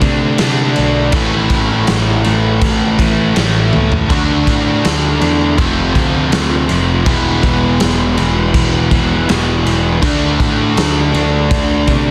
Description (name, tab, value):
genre	quiet-loud alternative rock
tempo	81 BPM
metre	4/4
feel	straight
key	A minor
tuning	A4 = 440 Hz
part	fuzz guitar	riff	0.0-12.1 s	E2 to D4	-21 LUFS	equal	distortion
part	overdriven electric guitar	riff	0.0-12.1 s	E2 to D4	-22 LUFS	equal	none
part	overdriven semi-hollow guitar	riff	0.0-12.1 s	A2 to F#4	-21 LUFS	equal	none
part	fuzz picked electric bass	bass	0.0-12.1 s	E1 to C3	-20 LUFS	equal	overdrive
part	raw garage drum kit	drums	0.0-12.1 s	crash cymbal, kick drum, snare drum, toms	-19 LUFS	equal	none
room	small room ambience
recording	dense, heavily limited modern master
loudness	-13 LUFS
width	mono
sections	0.0-12.1 A section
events	drum fill 3.7-4.1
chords	0.0 D; 1.1 Am; 4.1 D; 5.6 F; 7.1 E; 10.0 D